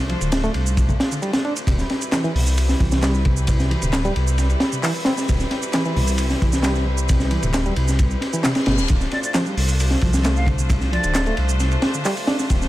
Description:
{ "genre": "breakbeat, breaks", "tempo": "133 BPM", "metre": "4/4", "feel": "straight", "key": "unclear", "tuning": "A4 = 439 Hz", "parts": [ { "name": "bright chamber string section", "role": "sustained chords", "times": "0.0-12.7 s", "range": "G3 to C5", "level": "-29 LUFS", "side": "equal", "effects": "sidechain pumping" }, { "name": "dark detuned saw bass", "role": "bass", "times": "0.0-12.7 s", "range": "D1 to C2", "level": "-20 LUFS", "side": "equal", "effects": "tube saturation" }, { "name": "barky reed electric piano", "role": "riff", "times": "0.1-12.6 s", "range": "B2 to D4", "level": "-27 LUFS", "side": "equal", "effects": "overdrive, fast tremolo, ping-pong delay" }, { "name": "crunchy breakbeat drum kit", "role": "drums", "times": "0.1-12.7 s", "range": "hi-hat, kick drum, ride cymbal, snare drum", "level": "-21 LUFS", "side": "equal", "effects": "none" }, { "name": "electronic shaker and handclaps", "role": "drums", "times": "0.2-12.7 s", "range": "none", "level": "-30 LUFS", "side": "right 2 dB", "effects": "none" }, { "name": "reverse cymbal", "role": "sound effects", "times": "8.4-8.9 s", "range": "none", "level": "-33 LUFS", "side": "left 6 dB", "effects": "none" }, { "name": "bright silver concert flute", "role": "melody", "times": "9.1-11.4 s", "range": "D5 to F5", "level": "-28 LUFS", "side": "left 1 dB", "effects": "telephone sound, ping-pong delay" } ], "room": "small room ambience", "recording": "none", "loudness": "-17 LUFS", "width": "side -16 dB against mid", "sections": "0.0-12.7 A section", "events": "reverse cymbal 8.4-8.9", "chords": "0.0 Dm7; 1.7 Cmaj7/D; 8.9 Dm7", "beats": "0.32 0.77 1.23 | 1.68 2.13 2.58 3.03 | 3.48 3.93 4.38 4.83 | 5.29 5.74 6.19 6.64 | 7.09 7.54 7.99 8.44 | 8.89 9.35 9.80 10.25 | 10.70 11.15 11.60 12.05 | 12.50" }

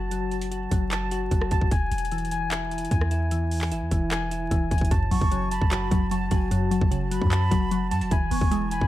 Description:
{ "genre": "hip hop, trap", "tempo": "150 BPM", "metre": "4/4", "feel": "half-time", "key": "F# minor", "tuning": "A4 = 440 Hz", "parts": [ { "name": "soft electric-piano-like synth keys", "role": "arpeggios", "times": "0.0-8.9 s", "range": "E3 to A5", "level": "-28 LUFS", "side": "left 2 dB", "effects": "chorus, tremolo, low-pass filter, tape echo" }, { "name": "clean 808-style bass", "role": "bass", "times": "0.0-8.9 s", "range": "E1 to F#2", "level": "-28 LUFS", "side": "equal", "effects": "none" }, { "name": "trap drum kit", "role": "drums", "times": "0.1-8.9 s", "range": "handclaps, hi-hat, kick drum, rim click", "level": "-26 LUFS", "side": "equal", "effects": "none" }, { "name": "glassy wavetable pluck", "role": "accompaniment", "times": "4.9-8.9 s", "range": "F#2 to B3", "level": "-27 LUFS", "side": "equal", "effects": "chorus, low-pass filter" }, { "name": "breathy jazz flute", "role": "second line", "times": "5.1-8.9 s", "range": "G#5 to C#6", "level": "-33 LUFS", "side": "right 3 dB", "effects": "tape echo" } ], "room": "little or no reverb", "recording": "dark, warm production, vinyl crackle", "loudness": "-22 LUFS", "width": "side -14 dB against mid", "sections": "0.0-4.9 A section; 4.9-8.9 B section", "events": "none", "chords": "0.0 F#m; 1.7 E; 4.9 F#m; 8.1 E6", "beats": "| 0.11 0.51 0.91 1.31 | 1.71 2.11 2.51 2.91 | 3.31 3.71 4.11 4.51 | 4.91 5.31 5.71 6.11 | 6.51 6.91 7.31 7.71 | 8.11 8.51" }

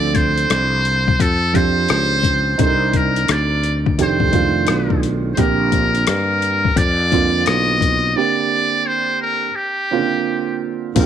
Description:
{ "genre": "hip hop, jazz-hop", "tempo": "86 BPM", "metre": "4/4", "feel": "swing 64% on 16ths", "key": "Bb major", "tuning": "A4 = 441 Hz", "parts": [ { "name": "trumpet with metal mute", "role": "melody", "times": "0.0-11.1 s", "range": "G4 to Eb5", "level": "-19 LUFS", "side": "equal", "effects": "none" }, { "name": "dark concert grand piano", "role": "accompaniment", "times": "0.0-11.1 s", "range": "Db3 to Bb4", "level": "-21 LUFS", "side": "right 9 dB", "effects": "none" }, { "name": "sustaining fretless electric bass", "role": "bass", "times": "0.0-11.1 s", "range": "F1 to G2", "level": "-20 LUFS", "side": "left 1 dB", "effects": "none" }, { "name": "boom bap sampler-style drum kit", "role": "drums", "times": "0.1-11.1 s", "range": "crash cymbal, hi-hat, kick drum, rim click", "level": "-20 LUFS", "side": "left 4 dB", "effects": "none" } ], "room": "light reverb, digital ambience", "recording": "1960s-style stereo", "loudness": "-15 LUFS", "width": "side -9 dB against mid", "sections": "0.0-11.0 A section", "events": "break 8.2-11.0", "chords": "0.0 Dm7; 2.6 Cm9; 4.0 F13; 5.4 Bb69", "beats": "0.50 1.20 1.89 | 2.59 3.29 3.99 4.68 | 5.38 6.08 6.78 7.47 | 8.17 8.87 9.57 10.27 | 10.96" }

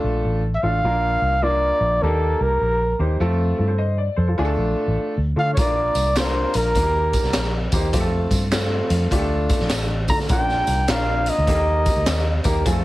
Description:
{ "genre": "uptempo 1960s-style soul", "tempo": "102 BPM", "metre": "4/4", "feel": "swing 64% on 8ths", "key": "unclear", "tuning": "A4 = 440 Hz", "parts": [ { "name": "clear concert grand piano", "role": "accompaniment", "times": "0.0-12.8 s", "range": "A3 to Eb5", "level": "-24 LUFS", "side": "left 1 dB", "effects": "none" }, { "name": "vintage muted fingered electric bass", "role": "bass", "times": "0.0-12.8 s", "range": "A1 to D3", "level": "-22 LUFS", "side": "equal", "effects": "none" }, { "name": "mellow trumpet", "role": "melody", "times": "0.5-12.5 s", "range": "A4 to Bb5", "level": "-21 LUFS", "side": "equal", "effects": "plate reverb" }, { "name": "raw garage drum kit", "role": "drums", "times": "5.6-12.8 s", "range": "hi-hat, kick drum, snare drum", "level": "-23 LUFS", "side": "equal", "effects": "none" }, { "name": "tambourine and handclaps", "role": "percussion", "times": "5.6-12.8 s", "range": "none", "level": "-32 LUFS", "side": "right 3 dB", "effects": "none" } ], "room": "light reverb", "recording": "heavily compressed radio sound, multiband compression, lossy compression artefacts", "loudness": "-18 LUFS", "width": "side -17 dB against mid", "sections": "0.0-12.8 A section", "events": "none", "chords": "0.0 Dm; 0.8 Bb; 2.0 Eb; 3.2 F; 4.4 Dm; 5.6 Bb; 6.8 Eb; 7.9 F; 9.1 Dm; 10.3 Bb; 11.5 Eb", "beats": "0.25 | 0.84 1.43 2.02 2.62 | 3.21 3.80 4.39 4.98 | 5.57 6.16 6.75 7.34 | 7.94 8.53 9.12 9.71 | 10.30 10.89 11.48 12.07 | 12.66" }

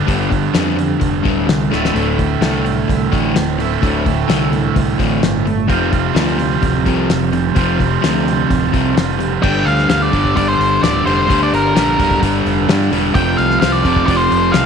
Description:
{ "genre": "classic rock", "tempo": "129 BPM", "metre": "4/4", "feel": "straight", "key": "unclear", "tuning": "A4 = 439 Hz", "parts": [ { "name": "crunchy overdriven guitar", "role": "riff", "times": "0.0-14.7 s", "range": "D2 to G3", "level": "-19 LUFS", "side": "left 10 dB", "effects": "none" }, { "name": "distorted electric guitar", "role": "riff", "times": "0.0-14.7 s", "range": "D2 to G4", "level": "-18 LUFS", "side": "right 10 dB", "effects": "distortion" }, { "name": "growling fingered electric bass", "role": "bass", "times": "0.1-14.7 s", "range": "D1 to G2", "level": "-20 LUFS", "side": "right 1 dB", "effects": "overdrive" }, { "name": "damped 70s drum kit", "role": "drums", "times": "0.1-14.7 s", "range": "crash cymbal, hi-hat, kick drum, snare drum", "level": "-20 LUFS", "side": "left 2 dB", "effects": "none" }, { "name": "octave-fuzz lead guitar", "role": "melody", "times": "9.4-14.7 s", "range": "Bb4 to G5", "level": "-17 LUFS", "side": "equal", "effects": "distortion, tape echo" } ], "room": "moderate plate reverb, RT60 1.8 s, small room ambience", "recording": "1960s-style stereo with parts hard left and right", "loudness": "-13 LUFS", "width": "side -6 dB against mid", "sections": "0.0-9.4 A section; 9.4-14.7 B section", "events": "drum fill 1.7", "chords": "0.0 G; 1.7 Dsus2; 5.7 Fsus2; 9.4 G5; 13.2 F5", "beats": "| 0.08 0.55 1.02 1.49 | 1.95 2.42 2.89 3.36 | 3.83 4.29 4.76 5.23 | 5.70 6.16 6.63 7.10 | 7.56 8.03 8.50 8.96 | 9.43 9.89 10.36 10.82 | 11.29 11.76 12.22 12.69 | 13.15 13.62 14.08 14.55" }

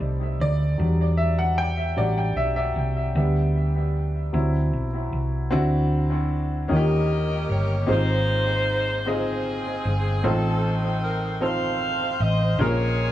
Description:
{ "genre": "slow gospel", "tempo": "51 BPM (dotted quarters)", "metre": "6/8", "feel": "straight", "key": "Ab major from 7.9 s", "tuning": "A4 = 441 Hz", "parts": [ { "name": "warm upright piano", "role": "accompaniment", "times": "0.0-13.1 s", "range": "Ab2 to G5", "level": "-26 LUFS", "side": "left 1 dB", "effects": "dub echo" }, { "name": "hollow-body short-scale fingered electric bass", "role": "bass", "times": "0.0-13.1 s", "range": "G1 to E2", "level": "-23 LUFS", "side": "equal", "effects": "none" }, { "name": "warm saxophone section", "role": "melody", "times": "6.7-13.1 s", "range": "C4 to F5", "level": "-26 LUFS", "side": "equal", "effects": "dub echo" } ], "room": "light reverb, small room ambience", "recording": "echo-heavy mix", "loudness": "-21 LUFS", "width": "side -13 dB against mid", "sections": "0.0-5.5 A section; 5.5-7.9 B section; 7.9-13.1 C section", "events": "upright piano solo 0.0-5.5", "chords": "0.0 B7#9b13 (rootless); 0.8 Em9; 3.2 G/D; 4.3 D9; 6.7 Eb7; 7.9 Ab6; 10.2 F7/A; 12.6 Bbm7", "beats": "| 0.79 1.97 | 3.16 4.34 | 5.52 6.70 | 7.88 9.06 | 10.24 11.42 | 12.60" }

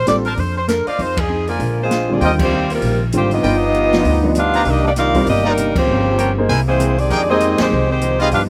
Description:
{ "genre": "jazz, big band swing", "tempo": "196 BPM", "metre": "4/4", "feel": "swing 60% on 8ths", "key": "Eb major", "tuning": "A4 = 440 Hz", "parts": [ { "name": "warm saxophone section", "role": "melody", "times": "0.0-8.4 s", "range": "G3 to F5", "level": "-21 LUFS", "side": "equal", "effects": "slapback echo" }, { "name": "upright bass", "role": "bass", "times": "0.0-8.5 s", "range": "G1 to Gb2", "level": "-23 LUFS", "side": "equal", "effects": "none" }, { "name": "hollow-body jazz guitar", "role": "accompaniment", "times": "0.1-8.5 s", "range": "G2 to C5", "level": "-29 LUFS", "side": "equal", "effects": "none" }, { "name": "warm concert grand piano", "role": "accompaniment", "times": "0.1-7.7 s", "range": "Eb2 to C5", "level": "-22 LUFS", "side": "equal", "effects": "none" }, { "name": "open jazz drum kit", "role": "drums", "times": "0.1-8.4 s", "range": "crash cymbal, hi-hat, kick drum, ride cymbal, snare drum", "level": "-27 LUFS", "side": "equal", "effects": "none" }, { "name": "clear trumpet section", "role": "stabs", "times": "0.3-8.3 s", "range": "D4 to Bb5", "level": "-24 LUFS", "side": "equal", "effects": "none" }, { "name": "warm trombone section", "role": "second line", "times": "1.5-8.4 s", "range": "C3 to F4", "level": "-24 LUFS", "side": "equal", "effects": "slapback echo" } ], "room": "little or no reverb", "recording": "recorded outdoors, with no room sound", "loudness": "-16 LUFS", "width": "mono", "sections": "0.0-2.2 A section; 2.2-8.5 B section", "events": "band accent 1.1, 2.4, 5.7, 7.6", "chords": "0.0 Bbmaj9; 1.0 Fm7; 1.6 Bb7; 2.2 Eb69; 3.4 G7b13; 4.7 Cm9; 5.9 Gm7b5; 6.5 C7b13; 7.1 Fm11", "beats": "0.07 0.38 0.69 | 0.99 1.30 1.60 1.91 | 2.22 2.52 2.83 3.13 | 3.44 3.75 4.05 4.36 | 4.66 4.97 5.27 5.58 | 5.88 6.19 6.49 6.80 | 7.10 7.41 7.71 8.02 | 8.32" }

